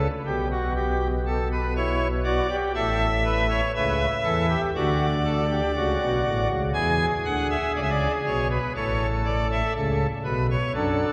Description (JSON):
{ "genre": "classical, baroque-style 3-part fugue for pipe organ", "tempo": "60 BPM", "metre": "4/4", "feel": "straight", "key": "unclear", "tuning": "A4 = 442 Hz", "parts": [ { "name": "pipe organ, cornet", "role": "solo", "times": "0.0-11.1 s", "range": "A1 to G#5", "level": "-24 LUFS", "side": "equal", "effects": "none" } ], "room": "wet church reverb, RT60 3.4 s", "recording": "none", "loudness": "-24 LUFS", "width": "mono", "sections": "0.0-6.8 A section; 6.8-11.1 B section", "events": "none", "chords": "0.0 D; 0.8 Em/B; 2.8 A; 6.8 E7; 8.8 A" }